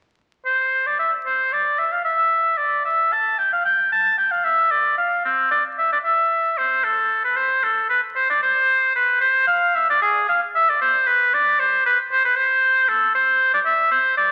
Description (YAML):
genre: classical, baroque-style fantasia for unaccompanied oboe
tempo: 76 BPM (dotted quarters)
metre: 12/8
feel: rubato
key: C major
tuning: A4 = 440 Hz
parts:
  - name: warm oboe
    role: solo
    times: 0.5-14.3 s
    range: C4 to A5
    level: -19 LUFS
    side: equal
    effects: none
room: wet concert hall reverb, RT60 2.1 s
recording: very old 78 rpm record, vinyl crackle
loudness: -19 LUFS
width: mono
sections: 0.5-14.3 A section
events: none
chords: none